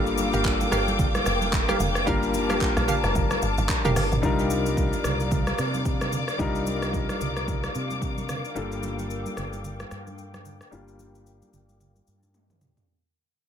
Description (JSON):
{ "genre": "amapiano", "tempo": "111 BPM", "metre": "4/4", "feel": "swing 58% on 16ths", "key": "G minor", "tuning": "A4 = 441 Hz", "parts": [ { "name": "clear baby grand piano", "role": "accompaniment", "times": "0.0-12.9 s", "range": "G3 to Bb4", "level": "-29 LUFS", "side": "left 3 dB", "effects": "low-pass filter" }, { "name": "dark studio string section", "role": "sustained chords", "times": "0.0-12.8 s", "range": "Bb3 to D6", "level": "-31 LUFS", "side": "left 2 dB", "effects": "sidechain pumping, low-pass filter" }, { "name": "hollow square pluck", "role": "stabs", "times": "0.0-4.0 s", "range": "G4 to F5", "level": "-32 LUFS", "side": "right 4 dB", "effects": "chorus, tape echo" }, { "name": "woody log drum bass", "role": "bass", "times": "0.0-4.2 s", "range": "F1 to Bb1", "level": "-28 LUFS", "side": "equal", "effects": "none" }, { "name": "deep house drum kit", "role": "drums", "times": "0.1-12.9 s", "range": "handclaps, hi-hat, kick drum, rim click, shaker, toms", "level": "-28 LUFS", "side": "equal", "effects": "none" }, { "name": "congas", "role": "percussion", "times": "0.2-12.8 s", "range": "none", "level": "-34 LUFS", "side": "right 4 dB", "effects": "none" }, { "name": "fretless electric bass", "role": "bass", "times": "4.2-12.8 s", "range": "G1 to C3", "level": "-31 LUFS", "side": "equal", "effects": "ensemble chorus" } ], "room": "little or no reverb", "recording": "none", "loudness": "-22 LUFS", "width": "side -8 dB against mid", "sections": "0.0-4.2 A section; 4.2-12.9 B section", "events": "fade-out 4.2-12.9; filter sweep 4.2-12.9; drum fill 12.3-12.9", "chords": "0.0 Gm7; 4.2 Cm11; 8.6 Gm7", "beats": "0.45 0.99 1.53 | 2.07 2.61 3.15 3.69 | 4.23 4.78 5.32 5.86 | 6.40 6.94 7.48 8.02 | 8.56 9.10 9.64 10.18 | 10.72 11.26 11.80 12.34" }